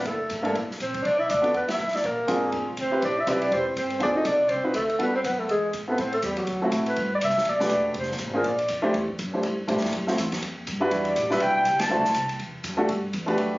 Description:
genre	jazz, small-group swing and bop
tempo	243 BPM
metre	4/4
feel	swing 58% on 8ths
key	G major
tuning	A4 = 443 Hz
part	breathy clarinet	melody	0.0-8.7, 11.1-12.3 s	F#4 to A5	-25 LUFS	equal	plate reverb
part	breathy tenor saxophone	second line	0.0-6.7 s	F#3 to E4	-28 LUFS	equal	none
part	warm grand piano	accompaniment	0.0-13.6 s	G3 to C5	-25 LUFS	equal	none
part	upright bass	bass	0.0-13.6 s	E1 to Bb2	-35 LUFS	equal	none
part	open jazz drum kit	drums	0.1-13.4 s	hi-hat, kick drum, ride cymbal, snare drum	-34 LUFS	equal	none
room	moderate studio reverb, RT60 0.5 s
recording	recorded on a phone in the room, studio reverb, nothing above 7.5 kHz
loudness	-22 LUFS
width	side -20 dB against mid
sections	0.0-7.0 A section; 7.0-13.6 B section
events	band accent 1.7, 11.8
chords	0.1 F#(#9); 1.0 Bm; 2.0 Bb9; 3.0 Am9; 4.0 D7b9; 5.0 Gmaj9; 5.5 E; 6.0 A5; 6.5 D7; 7.0 Gmaj7; 8.0 Fm; 8.4 Bbadd9; 8.9 C6; 9.9 F#m7b5; 10.4 Fsus2; 10.9 Em7; 11.9 D9; 12.9 Gmaj7

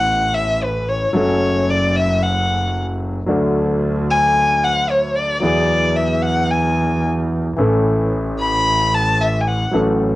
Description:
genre	tango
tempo	112 BPM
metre	4/4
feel	rubato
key	A major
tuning	A4 = 437 Hz
part	warm violin	second line	0.0-9.7 s	B4 to B5	-18 LUFS	left 1 dB	none
part	warm concert grand piano	accompaniment	0.0-10.2 s	A1 to A4	-20 LUFS	left 1 dB	none
part	clear double bass	bass	0.0-10.2 s	F#1 to E2	-22 LUFS	right 1 dB	none
room	moderate studio reverb, RT60 0.6 s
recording	home recording on cassette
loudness	-15 LUFS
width	side -17 dB against mid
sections	0.0-10.2 A section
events	violin solo 0.0-10.2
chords	0.0 Aadd9; 1.1 F#m; 3.3 D; 5.4 Eadd9; 7.6 A

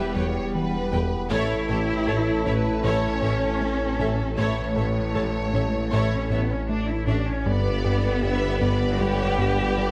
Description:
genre	cinematic, hybrid orchestral and electronic film score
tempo	78 BPM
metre	4/4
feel	straight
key	unclear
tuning	A4 = 440 Hz
part	warm symphonic violin section	melody	0.0-9.9 s	G4 to E5	-37 LUFS	equal	none
part	warm studio violin section	second line	0.0-9.9 s	E4 to B5	-37 LUFS	equal	none
part	warm symphonic viola section	accompaniment	0.0-9.9 s	G3 to C#5	-36 LUFS	equal	none
part	clear French horn section	sustained chords	0.0-9.9 s	G3 to C#5	-35 LUFS	equal	none
part	dark trombone section	sustained chords	0.0-9.9 s	D3 to B3	-34 LUFS	equal	none
part	swelling detuned saw bass	bass	0.0-9.9 s	E1 to A1	-33 LUFS	equal	none
part	warm chamber cello section	bass	0.0-9.9 s	G3 to G4	-31 LUFS	equal	none
part	soft round pluck	arpeggios	0.2-9.6 s	G3 to A4	-37 LUFS	equal	none
part	rubbery square bass	riff	0.2-9.9 s	E2 to A3	-30 LUFS	equal	none
part	warm symphonic double bass section	bass	0.2-9.9 s	G1 to E2	-34 LUFS	equal	none
part	warm tuba	bass	0.2-9.9 s	E1 to A1	-34 LUFS	equal	none
room	light reverb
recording	close, detailed microphones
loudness	-24 LUFS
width	mono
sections	0.0-9.9 A section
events	none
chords	0.0 Em; 1.3 A; 7.5 G

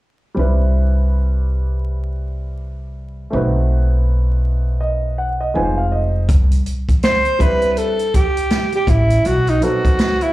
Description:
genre	hip hop, jazz-hop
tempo	81 BPM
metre	4/4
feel	swing 61% on 16ths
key	unclear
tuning	A4 = 441 Hz
part	dark baby grand piano	accompaniment	0.3-10.3 s	F#3 to Ab5	-23 LUFS	right 1 dB	slapback echo
part	upright bass	bass	0.4-9.6 s	F1 to C2	-17 LUFS	equal	none
part	open jazz drum kit	drums	6.3-10.3 s	hi-hat, kick drum, snare drum	-17 LUFS	equal	none
part	breathy alto saxophone	melody	7.0-10.3 s	D#4 to C5	-17 LUFS	right 1 dB	slapback echo
room	little or no reverb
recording	live gig heard through the venue's PA, club reverb, vinyl crackle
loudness	-15 LUFS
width	side -16 dB against mid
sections	0.4-6.3 A section; 6.3-10.3 B section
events	grand piano fill 5.2-6.3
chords	0.4 Cmaj9; 3.3 B7b9; 5.5 Fm7; 6.3 Cmaj9; 9.3 B7b9

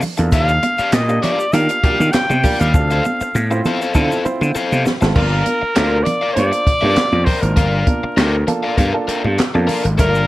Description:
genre	funk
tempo	99 BPM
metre	4/4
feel	straight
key	G dorian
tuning	A4 = 440 Hz
part	crunchy overdriven guitar	accompaniment	0.0-10.3 s	G4 to G5	-23 LUFS	left 4 dB	plate reverb
part	compact cocktail drum kit	drums	0.0-10.1 s	crash cymbal, handclaps, hi-hat, kick drum, snare drum	-18 LUFS	equal	none
part	congas	percussion	0.0-10.1 s	none	-25 LUFS	right 2 dB	none
part	egg shaker	percussion	0.0-5.1, 10.0-10.3 s	none	-38 LUFS	left 4 dB	none
part	warm upright piano	stabs	0.2-10.3 s	A3 to C5	-23 LUFS	right 2 dB	plate reverb
part	gritty slap bass	bass	0.2-10.2 s	G1 to Eb3	-17 LUFS	equal	overdrive
part	warm trumpet	melody	0.3-10.3 s	Bb4 to G5	-19 LUFS	equal	plate reverb
room	light reverb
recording	vinyl crackle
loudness	-14 LUFS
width	side -17 dB against mid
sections	0.0-5.2 A section; 5.2-10.3 B section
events	drum fill 2.7-5.2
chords	0.0 Ebmaj9; 2.7 Dm7; 5.2 Gm7

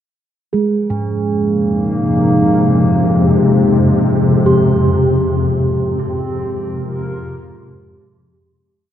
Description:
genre	dark ambient drone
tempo	free time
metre	none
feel	none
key	unclear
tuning	A4 = 440 Hz
part	swarming drone	drone	1.6-8.9 s	F2 to C3	-16 LUFS	left 2 dB	built-in reverb
part	quartz singing bowl	texture	0.5-8.8 s	Ab3 to Ab4	-20 LUFS	right 3 dB	none
part	dark analog pad	sustained chords	1.5-8.8 s	F3 to Bb4	-17 LUFS	left 1 dB	lush chorus
part	bronze singing bowl	arpeggios	0.9-8.9 s	Ab2 to G4	-20 LUFS	right 1 dB	dub echo
room	wet spring reverb, RT60 2.3 s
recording	echo-heavy mix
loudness	-12 LUFS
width	side -10 dB against mid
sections	0.5-8.8 A section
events	fade-out on analog synth pad 0.5-8.8; filter sweep on synth drone 0.5-8.8; fade-out 4.7-8.8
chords	0.5 Abmaj13/F

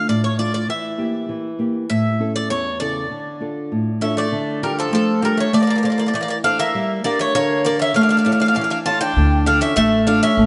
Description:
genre	greek folk, Greek bouzouki band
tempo	99 BPM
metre	2/4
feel	straight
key	D harmonic minor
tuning	A4 = 440 Hz
part	Greek bouzouki	melody	0.0-10.5 s	A4 to A5	-23 LUFS	equal	none
part	nylon-string guitar	accompaniment	0.0-10.5 s	E2 to C#5	-22 LUFS	equal	none
part	Greek bouzouki	second line	4.0-10.5 s	F3 to F4	-27 LUFS	equal	none
part	upright bass	bass	9.2-10.5 s	A1 to D2	-21 LUFS	equal	none
room	moderate plate reverb, RT60 2.6 s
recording	nothing above 10.7 kHz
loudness	-19 LUFS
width	mono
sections	0.0-4.3 A section; 4.3-10.5 B section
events	none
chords	0.0 Dm; 0.7 Edim; 1.9 A; 3.1 Dm; 5.5 Am; 6.7 Gm; 8.0 A; 9.2 Dm

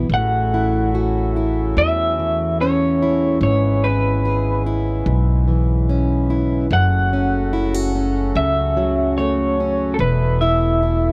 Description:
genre	acoustic folk-pop ballad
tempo	73 BPM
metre	4/4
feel	straight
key	A major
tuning	A4 = 440 Hz
part	fingerpicked plugged-in steel-string acoustic guitar	accompaniment	0.0-11.1 s	E2 to G#4	-23 LUFS	equal	none
part	upright bass	bass	0.0-11.1 s	E1 to E2	-22 LUFS	equal	none
part	electric guitar through a small old amp	melody	0.1-11.1 s	A4 to F#5	-23 LUFS	equal	tremolo
part	pedal harmonium	sustained chords	0.1-11.1 s	B2 to F#4	-31 LUFS	equal	none
room	studio ambience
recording	dry, close 1970s-style studio recording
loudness	-18 LUFS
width	mono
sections	0.1-11.1 A section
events	none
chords	0.1 A6; 3.4 E6/G#; 6.7 F#m; 10.0 Esus4

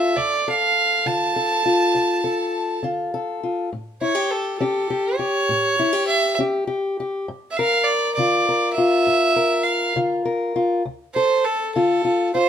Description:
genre	acoustic country blues, solo or duo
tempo	67 BPM (dotted quarters)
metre	12/8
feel	straight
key	D minor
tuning	A4 = 440 Hz
part	rich fiddle	melody	0.0-12.5 s	A4 to A5	-20 LUFS	right 3 dB	none
part	fingerpicked acoustic archtop guitar	accompaniment	0.0-12.5 s	D2 to Bb4	-21 LUFS	left 3 dB	none
room	moderate studio reverb, RT60 0.6 s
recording	minimal, uncompressed stereo recording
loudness	-18 LUFS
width	side -9 dB against mid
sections	0.0-12.5 A section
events	none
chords	0.0 Dm; 3.7 A7; 7.3 Gm7; 10.9 Dm7

